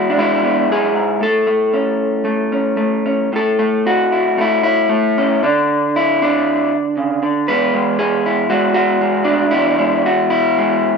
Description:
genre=folk, solo fingerstyle acoustic guitar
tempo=116 BPM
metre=4/4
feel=rubato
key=A major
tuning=A4 = 438 Hz
part: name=electric guitar through a small old amp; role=solo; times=0.0-11.0 s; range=E2 to B4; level=-13 LUFS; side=equal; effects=none
room=moderate large studio reverb, RT60 1.0 s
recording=band playing live in one room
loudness=-13 LUFS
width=side -5 dB against mid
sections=0.0-3.3 A section; 3.3-11.0 A section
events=none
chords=0.0 E; 1.2 A; 3.3 A5; 5.4 Dsus2; 7.5 E

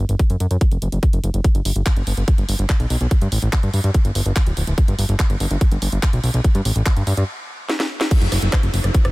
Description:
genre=psychedelic trance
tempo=144 BPM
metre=4/4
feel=straight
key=unclear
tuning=A4 = 438 Hz
part: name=fat analog bass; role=bass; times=0.0-9.1 s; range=D1 to G2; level=-18 LUFS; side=equal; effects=none
part: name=garage drum kit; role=drums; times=0.1-9.1 s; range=crash cymbal, handclaps, hi-hat, rim click, snare drum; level=-25 LUFS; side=equal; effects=none
part: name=electronic kick drum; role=drums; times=0.2-9.0 s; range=none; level=-16 LUFS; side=equal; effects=none
room=little or no reverb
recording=none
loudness=-16 LUFS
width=side -21 dB against mid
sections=0.0-8.1 A section; 8.1-9.1 B section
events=stop 7.3-8.1; drum fill 7.7-8.1; band accent 8.0; drop 8.1-9.1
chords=none

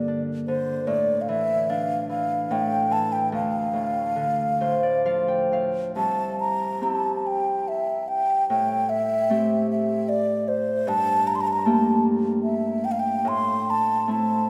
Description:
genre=celtic folk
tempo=63-79 BPM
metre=3/4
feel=rubato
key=unclear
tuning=A4 = 440 Hz
part: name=mellow hollow baroque flute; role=melody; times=0.0-14.5 s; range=C5 to C6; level=-26 LUFS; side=equal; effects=none
part: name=Celtic harp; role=accompaniment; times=0.0-14.5 s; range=C2 to G5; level=-28 LUFS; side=equal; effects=none
room=wet church reverb, RT60 3.5 s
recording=recorded in a church or concert hall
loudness=-24 LUFS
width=mono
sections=0.0-6.0 A section; 6.0-14.5 B section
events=harp fill 4.2-6.0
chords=0.0 Gm; 0.9 Asus4; 3.3 Dm; 6.0 C; 8.5 Am7; 10.9 Gmadd9; 13.2 Am

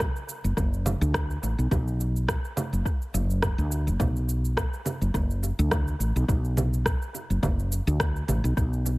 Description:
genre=organic downtempo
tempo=105 BPM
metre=4/4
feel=swing 55% on 16ths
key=B minor pentatonic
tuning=A4 = 440 Hz
part: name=woody fretless electric bass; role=bass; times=0.0-9.0 s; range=F#1 to D2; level=-25 LUFS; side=equal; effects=sidechain pumping
part: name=electronic kick drum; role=drums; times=0.0-8.7 s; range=none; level=-28 LUFS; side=equal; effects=none
part: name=electronic rim click, congas and cabasa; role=drums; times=0.0-9.0 s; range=none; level=-30 LUFS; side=right 1 dB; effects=analog delay
room=little or no reverb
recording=echo-heavy mix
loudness=-24 LUFS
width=side -21 dB against mid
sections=0.0-9.0 A section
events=none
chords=none

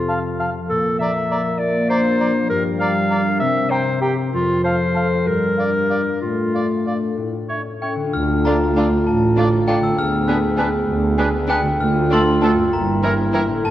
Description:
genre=cinematic, playful, whimsical film cue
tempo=65 BPM (dotted quarters)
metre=6/8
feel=uneven beats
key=D minor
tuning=A4 = 440 Hz
part: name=warm clarinet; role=second line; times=0.0-13.4 s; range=D4 to F5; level=-22 LUFS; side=left 1 dB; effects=none
part: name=dark French horn section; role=sustained chords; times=0.0-13.7 s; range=C3 to Ab4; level=-22 LUFS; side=equal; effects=none
part: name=concert harp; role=arpeggios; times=0.0-13.7 s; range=F2 to Bb4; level=-24 LUFS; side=left 4 dB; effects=none
part: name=mellow hollow concert flute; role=second line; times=0.1-13.4 s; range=E5 to Bb5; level=-32 LUFS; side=left 1 dB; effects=none
part: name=warm oboe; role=second line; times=0.1-13.5 s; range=A4 to G5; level=-28 LUFS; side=right 2 dB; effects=none
part: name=glockenspiel with hard plastic mallets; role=melody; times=7.8-13.7 s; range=G5 to F6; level=-24 LUFS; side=left 2 dB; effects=none
part: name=clear studio double bass section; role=bass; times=8.1-13.7 s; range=G1 to D2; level=-23 LUFS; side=right 3 dB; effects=none
part: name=warm studio cello section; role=bass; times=8.1-13.7 s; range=D2 to A2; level=-23 LUFS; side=right 3 dB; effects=none
part: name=dark studio violin section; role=melody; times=8.5-13.4 s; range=F4 to Bb4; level=-31 LUFS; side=left 2 dB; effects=none
part: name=rich studio violin section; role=second line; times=8.5-13.4 s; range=D4 to E4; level=-30 LUFS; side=left 1 dB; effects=none
part: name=rich studio viola section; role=accompaniment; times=8.5-13.4 s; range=E3 to B3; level=-27 LUFS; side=right 2 dB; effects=none
room=wet scoring stage reverb, RT60 2.0 s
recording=worn, warbling old tape, cassette tape, warbly pitch drift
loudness=-16 LUFS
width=side -13 dB against mid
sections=0.0-8.1 A section; 8.1-13.7 B section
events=none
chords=0.0 F; 0.7 Bbmaj7; 2.5 Gm7; 3.4 C5; 4.3 F; 5.3 Gm7; 6.2 Dm/A; 7.2 A; 8.1 Dm; 10.0 Ddim7; 11.8 Dm; 12.7 Edim/G

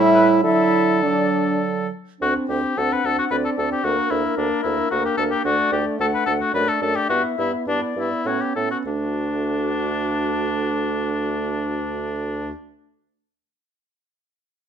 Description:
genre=quick classical-period movement for wind quintet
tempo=96-114 BPM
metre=3/4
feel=rubato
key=D major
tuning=A4 = 439 Hz
part: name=concert flute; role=melody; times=0.0-12.5 s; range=F#4 to F#5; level=-28 LUFS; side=left 8 dB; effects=none
part: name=clear French horn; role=accompaniment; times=0.0-12.5 s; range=A3 to E4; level=-24 LUFS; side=right 1 dB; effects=none
part: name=mellow clarinet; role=accompaniment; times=0.0-12.5 s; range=F#3 to E4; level=-27 LUFS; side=right 6 dB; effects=none
part: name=mellow bassoon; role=bass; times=0.0-12.5 s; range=D2 to D3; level=-26 LUFS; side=right 4 dB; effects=none
part: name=warm oboe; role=second line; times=0.1-12.5 s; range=D4 to B4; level=-24 LUFS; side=left 3 dB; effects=none
room=light reverb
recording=minimal, uncompressed stereo recording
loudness=-19 LUFS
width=side -8 dB against mid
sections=0.0-2.2 A section; 2.2-8.9 B section; 8.9-12.5 C section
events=slowing down 4.6-8.9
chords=0.4 D; 2.2 D7; 3.8 Daug; 5.4 D; 6.5 D/F#; 7.1 Em/G; 8.3 Aadd9; 8.9 D

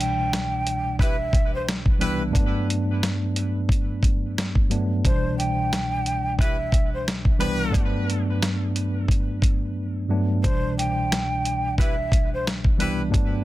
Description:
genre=hip hop, boom-bap hip-hop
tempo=89 BPM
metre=4/4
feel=swing 58% on 16ths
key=unclear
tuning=A4 = 440 Hz
part: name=breathy mellow jazz flute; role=melody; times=0.0-12.5 s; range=C5 to G5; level=-28 LUFS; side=right 1 dB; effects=plate reverb, tape echo
part: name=mellow tine electric piano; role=accompaniment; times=0.0-13.4 s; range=C2 to D4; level=-25 LUFS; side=equal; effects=fast stereo tremolo
part: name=dusty soul sampler-style drum kit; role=drums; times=0.0-13.3 s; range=hi-hat, kick drum, snare drum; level=-22 LUFS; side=equal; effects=none
part: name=warm horn section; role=stabs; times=1.0-2.2, 6.4-13.0 s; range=B3 to B4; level=-32 LUFS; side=left 1 dB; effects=plate reverb, tape echo
room=little or no reverb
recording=dense, heavily limited modern master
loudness=-21 LUFS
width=side -16 dB against mid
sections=0.0-13.4 A section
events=silent gap 9.8-10.4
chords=0.0 Cmaj7; 2.4 Gmaj7; 5.0 Cmaj7; 7.7 Gmaj7; 10.4 Cmaj7

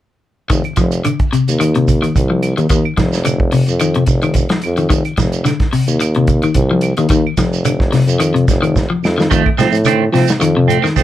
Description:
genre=afrobeat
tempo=109 BPM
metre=4/4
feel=swing 54% on 16ths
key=F mixolydian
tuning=A4 = 440 Hz
part: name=electric guitar at the edge of break-up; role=arpeggios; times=0.5-11.0 s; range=C3 to F3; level=-16 LUFS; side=left 4 dB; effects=lush chorus
part: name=clear tuba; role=bass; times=0.5-11.0 s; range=F1 to F3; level=-17 LUFS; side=equal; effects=none
part: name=warm soul drum kit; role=drums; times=0.5-11.0 s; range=hi-hat, kick drum, rim click, snare drum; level=-18 LUFS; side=right 1 dB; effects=none
part: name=shekere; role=percussion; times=0.5-11.0 s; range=none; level=-22 LUFS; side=right 7 dB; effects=none
part: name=claves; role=percussion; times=0.6-11.0 s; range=none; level=-26 LUFS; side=right 8 dB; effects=none
part: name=electric guitar at the edge of break-up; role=stabs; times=9.3-11.0 s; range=Eb3 to C4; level=-16 LUFS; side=right 9 dB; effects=analog chorus
room=moderate club reverb, RT60 0.5 s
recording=none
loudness=-12 LUFS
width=side -12 dB against mid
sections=0.5-9.3 A section; 9.3-11.0 B section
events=drum fill 8.8-9.3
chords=0.5 F5; 9.3 F7

